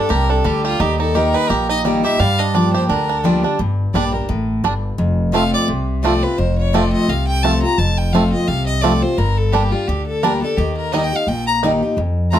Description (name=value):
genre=bluegrass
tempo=172 BPM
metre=4/4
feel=swing 56% on 8ths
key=G minor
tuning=A4 = 440 Hz
part: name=clear fiddle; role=melody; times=0.0-12.4 s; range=F4 to Bb5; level=-22 LUFS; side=left 1 dB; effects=none
part: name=picked steel-string acoustic guitar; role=accompaniment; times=0.0-12.4 s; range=F2 to G4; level=-19 LUFS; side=left 2 dB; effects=none
part: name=bluegrass banjo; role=arpeggios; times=0.0-12.4 s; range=G3 to G4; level=-20 LUFS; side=right 6 dB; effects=none
part: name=upright bass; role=bass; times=0.1-12.4 s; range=F1 to G2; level=-20 LUFS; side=equal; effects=none
room=light reverb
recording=close, detailed microphones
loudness=-15 LUFS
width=side -10 dB against mid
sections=0.0-3.6 A section; 3.6-12.4 B section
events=fiddle solo 3.6-12.4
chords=0.0 Gmadd9; 0.8 Eb; 2.2 Gm7; 3.6 Gm; 5.0 F; 9.2 Gm; 10.6 Eb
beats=0.10 0.45 | 0.80 1.15 1.50 1.85 | 2.20 2.55 2.90 3.24 | 3.59 3.94 4.29 4.64 | 4.99 5.34 5.69 6.04 | 6.39 6.74 7.08 7.43 | 7.78 8.13 8.48 8.83 | 9.18 9.53 9.88 10.23 | 10.58 10.93 11.28 11.62 | 11.97 12.32